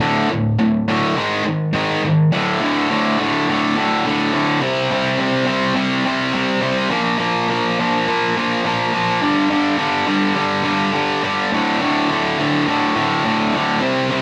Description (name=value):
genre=metal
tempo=104 BPM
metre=4/4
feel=straight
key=D minor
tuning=A4 = 440 Hz
part: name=tight distorted guitar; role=solo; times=0.0-14.2 s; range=D2 to C4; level=-18 LUFS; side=equal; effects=distortion
room=digital ambience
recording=dry, close 1970s-style studio recording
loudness=-18 LUFS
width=mono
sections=0.0-2.3 A section; 2.3-14.2 B section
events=half time 2.3-14.2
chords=0.0 D5; 1.2 G#5; 2.3 D5; 4.6 C5; 6.9 Bb5; 9.2 G5; 11.5 D5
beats=| 0.01 0.59 1.17 1.74 | 2.31 2.89 3.46 4.04 | 4.61 5.19 5.76 6.34 | 6.91 7.49 8.06 8.64 | 9.21 9.79 10.36 10.94 | 11.51 12.08 12.65 13.23 | 13.80